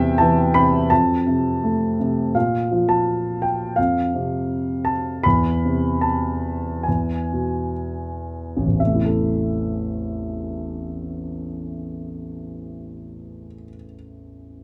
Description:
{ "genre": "classical, lyrical solo piano", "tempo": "56-86 BPM", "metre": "4/4", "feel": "rubato", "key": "A minor", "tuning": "A4 = 442 Hz", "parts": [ { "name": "dark grand piano", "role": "solo", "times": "0.0-14.6 s", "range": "A1 to B5", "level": "-22 LUFS", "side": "equal", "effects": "none" } ], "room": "light reverb", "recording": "close, detailed microphones", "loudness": "-22 LUFS", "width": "mono", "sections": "0.0-2.4 A section; 2.4-8.8 B section; 8.8-12.9 C section", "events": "slowing down 2.4-8.8", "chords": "0.0 Am9/E; 0.9 F; 2.4 Bb5; 3.8 F5; 5.2 Am/E; 6.9 E; 8.8 Am", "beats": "0.20 0.90 1.63 | 2.35 3.06 3.78 4.50 | 5.25 6.03 6.87 7.78 | 8.80 9.84 10.85 11.86" }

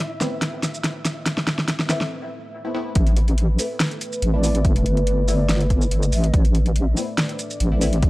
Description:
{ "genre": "deep dubstep", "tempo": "142 BPM", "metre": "4/4", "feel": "swing 53% on 16ths, half-time", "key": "A minor", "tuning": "A4 = 439 Hz", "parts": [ { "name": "deep dark ambient pad", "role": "sustained chords", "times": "0.0-8.1 s", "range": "A3 to D5", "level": "-30 LUFS", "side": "equal", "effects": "chorus, built-in reverb" }, { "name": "deep house drum kit", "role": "drums", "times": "0.0-8.1 s", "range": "hi-hat, shaker, snare drum", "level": "-24 LUFS", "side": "equal", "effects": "overdrive" }, { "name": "flickering grainy texture", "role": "texture", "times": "0.0-2.1 s", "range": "E4 to E5", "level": "-38 LUFS", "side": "equal", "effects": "built-in reverb" }, { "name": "filtered dub chord stab", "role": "stabs", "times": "0.2-8.1 s", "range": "A3 to E4", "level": "-30 LUFS", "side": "left 1 dB", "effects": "phaser, lush chorus, dub echo" }, { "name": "deep soft wobble bass", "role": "bass", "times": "3.0-8.1 s", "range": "G1 to A1", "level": "-19 LUFS", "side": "equal", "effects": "chorus, tube saturation" }, { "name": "electronic kick drum", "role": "drums", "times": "3.0-8.1 s", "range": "none", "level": "-19 LUFS", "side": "equal", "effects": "overdrive" }, { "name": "breathy mellow long shakuhachi", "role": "melody", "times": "4.3-6.5 s", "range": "D5 to E5", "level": "-34 LUFS", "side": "equal", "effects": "vintage 12-bit sampler grit, dub echo" } ], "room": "digital ambience", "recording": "dry, gritty hardware recording, cassette tape", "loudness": "-18 LUFS", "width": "side -19 dB against mid", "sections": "0.0-3.0 A section; 3.0-8.1 B section", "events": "build-up 0.0-3.0; drum fill 0.0-2.1; filter sweep on ambient pad 0.0-3.0; break 2.1-3.0; drop 3.0-8.1", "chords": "0.0 Amadd9", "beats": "0.00 0.42 0.84 | 1.27 1.69 2.11 2.54 | 2.96 3.38 3.80 4.22 | 4.65 5.07 5.49 5.92 | 6.34 6.76 7.18 7.61 | 8.03" }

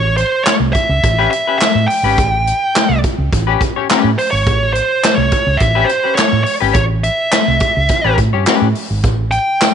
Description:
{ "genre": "funk", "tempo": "105 BPM", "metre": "4/4", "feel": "straight", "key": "A mixolydian", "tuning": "A4 = 438 Hz", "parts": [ { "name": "high-gain lead guitar", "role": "melody", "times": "0.0-9.7 s", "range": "C5 to G5", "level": "-16 LUFS", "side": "right 2 dB", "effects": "distortion" }, { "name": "vintage muted fingered electric bass", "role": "bass", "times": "0.0-9.4 s", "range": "G#1 to A2", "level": "-16 LUFS", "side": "right 1 dB", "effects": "none" }, { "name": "swinging big-band drum kit", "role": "drums", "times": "0.2-9.7 s", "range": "handclaps, hi-hat, kick drum, snare drum", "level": "-16 LUFS", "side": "equal", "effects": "none" }, { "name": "semi-hollow electric guitar", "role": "accompaniment", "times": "1.2-8.7 s", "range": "C#4 to C#5", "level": "-18 LUFS", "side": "left 13 dB", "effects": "analog chorus" }, { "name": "tambourine", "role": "percussion", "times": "9.0-9.7 s", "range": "none", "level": "-28 LUFS", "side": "left 15 dB", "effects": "none" } ], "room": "small room ambience", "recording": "1960s-style stereo, nothing above 10.8 kHz", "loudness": "-12 LUFS", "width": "side -8 dB against mid", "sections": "0.0-9.7 A section", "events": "none", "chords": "0.0 A9", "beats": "0.46 1.03 1.61 | 2.18 2.75 3.32 3.89 | 4.46 5.04 5.61 6.18 | 6.75 7.32 7.89 8.47 | 9.04 9.61" }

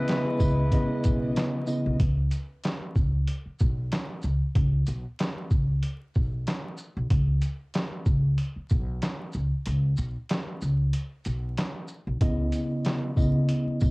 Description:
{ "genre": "hip hop, boom-bap hip-hop", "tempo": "94 BPM", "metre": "4/4", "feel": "swing 54% on 16ths", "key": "unclear", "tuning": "A4 = 439 Hz", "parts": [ { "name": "mellow tine electric piano", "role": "accompaniment", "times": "0.0-2.0, 12.2-13.9 s", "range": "C#3 to D#5", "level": "-27 LUFS", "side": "equal", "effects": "medium stereo tremolo, high-pass filter, low-pass filter, cassette tape" }, { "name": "warm studio string section", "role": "sustained chords", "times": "0.0-2.0 s", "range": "C#3 to D#5", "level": "-38 LUFS", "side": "equal", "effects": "high-pass filter, low-pass filter, cassette tape" }, { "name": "warm horn section", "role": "stabs", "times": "0.0-1.6 s", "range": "G#3 to B4", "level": "-32 LUFS", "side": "left 1 dB", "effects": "high-pass filter, low-pass filter, cassette tape, tape echo" }, { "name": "boom bap sampler-style drum kit", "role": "drums", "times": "0.1-13.9 s", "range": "handclaps, hi-hat, kick drum, shaker, snare drum", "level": "-26 LUFS", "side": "equal", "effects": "cassette tape" }, { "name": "upright bass", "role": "bass", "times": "0.4-13.9 s", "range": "B1 to C#2", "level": "-26 LUFS", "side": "equal", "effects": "none" }, { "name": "tambourine", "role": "percussion", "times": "0.4-1.8, 12.5-13.9 s", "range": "none", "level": "-50 LUFS", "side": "right 3 dB", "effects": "none" } ], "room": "light reverb", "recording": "home recording on cassette, vinyl crackle", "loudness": "-24 LUFS", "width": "side -27 dB against mid", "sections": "0.0-2.0 A section; 2.0-13.9 B section", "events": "break 9.7-12.2", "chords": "0.0 C#m9; 2.0 Bsus2; 12.2 C#m9", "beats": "0.09 0.72 1.36 | 2.00 2.64 3.28 3.91 | 4.55 5.19 5.83 6.47 | 7.11 7.74 8.38 9.02 | 9.66 10.30 10.94 11.57 | 12.21 12.85 13.49" }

